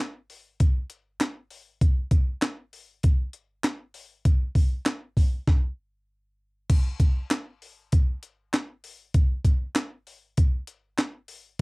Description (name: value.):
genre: funk.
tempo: 98 BPM.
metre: 4/4.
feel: swing 56% on 16ths.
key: none.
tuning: none.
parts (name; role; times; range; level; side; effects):
breakbeat sampler-style drum kit; drums; 0.3-11.4 s; crash cymbal, handclaps, hi-hat, kick drum, snare drum; -21 LUFS; equal; none.
room: little or no reverb.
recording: dry, close 1970s-style studio recording.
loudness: -23 LUFS.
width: side -30 dB against mid.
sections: 0.0-6.7 A section; 6.7-11.6 B section.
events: stop 5.5-6.7.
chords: none.